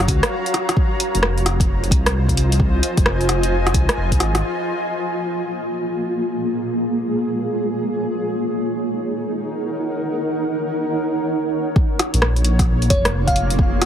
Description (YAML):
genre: future garage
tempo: 131 BPM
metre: 4/4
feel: swing 64% on 16ths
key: Bb minor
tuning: A4 = 444 Hz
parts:
  - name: granular cloud pad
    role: sustained chords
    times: 0.0-13.9 s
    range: Bb3 to Bb5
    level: -22 LUFS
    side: equal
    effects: built-in reverb, vintage 12-bit sampler grit, sidechain pumping
  - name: dark detuned saw bass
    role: bass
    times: 0.0-4.4, 12.1-13.8 s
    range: F1 to Db2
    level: -19 LUFS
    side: equal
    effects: sidechain pumping
  - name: deep house drum kit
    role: drums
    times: 0.0-4.4, 12.0-13.9 s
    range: hi-hat, rim click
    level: -22 LUFS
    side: equal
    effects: overdrive
  - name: electronic kick drum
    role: drums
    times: 0.1-4.2, 11.8-13.7 s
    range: none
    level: -18 LUFS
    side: equal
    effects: overdrive
  - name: bell-like FM electric piano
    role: melody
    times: 12.9-13.5 s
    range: Db5 to F5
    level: -26 LUFS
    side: equal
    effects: chorus, tape echo
room: light reverb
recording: heavily compressed radio sound, multiband compression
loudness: -17 LUFS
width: side -9 dB against mid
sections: 0.0-4.4 A section; 4.4-11.8 B section; 11.8-13.9 A section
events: filter sweep on ambient pad 4.4-11.8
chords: 0.0 Gbmaj7; 0.8 Fm7; 4.4 Bbm7; 8.1 Ebm7; 11.8 Bbm7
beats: 0.31 | 0.77 1.23 1.69 2.15 | 2.60 3.06 3.52 3.98 | 4.43 4.89 5.35 5.81 | 6.27 6.72 7.18 7.64 | 8.10 8.56 9.02 9.47 | 9.93 10.39 10.85 11.30 | 11.76 12.22 12.68 13.14 | 13.60